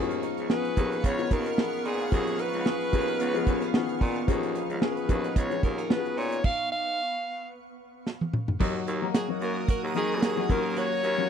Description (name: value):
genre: 1980s-style pop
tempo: 111 BPM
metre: 4/4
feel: swing 55% on 16ths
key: unclear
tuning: A4 = 440 Hz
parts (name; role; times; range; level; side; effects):
- warm baby grand piano; accompaniment; 0.0-11.3 s; Eb3 to Db5; -31 LUFS; left 14 dB; none
- shimmering ambient pad; sustained chords; 0.0-11.3 s; Cb4 to Eb6; -36 LUFS; right 2 dB; chorus, built-in reverb
- direct-recorded clean electric guitar; riff; 0.0-11.3 s; F3 to Ab4; -36 LUFS; right 8 dB; wide subtle chorus, slapback echo
- clear baritone saxophone; bass; 0.0-11.2 s; Db2 to Eb3; -33 LUFS; right 1 dB; none
- modern studio drum kit; drums; 0.1-11.2 s; crash cymbal, hi-hat, kick drum, snare drum, tambourine, toms; -26 LUFS; right 2 dB; none
- bright alto saxophone; melody; 0.5-11.3 s; Ab4 to F5; -30 LUFS; right 1 dB; slapback echo
room: little or no reverb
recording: dry, close 1970s-style studio recording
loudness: -25 LUFS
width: side -8 dB against mid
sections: 0.0-8.6 A section; 8.6-11.3 B section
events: stop 6.4-8.6; drum fill 8.1-8.6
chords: 0.0 Db7; 8.6 Ebm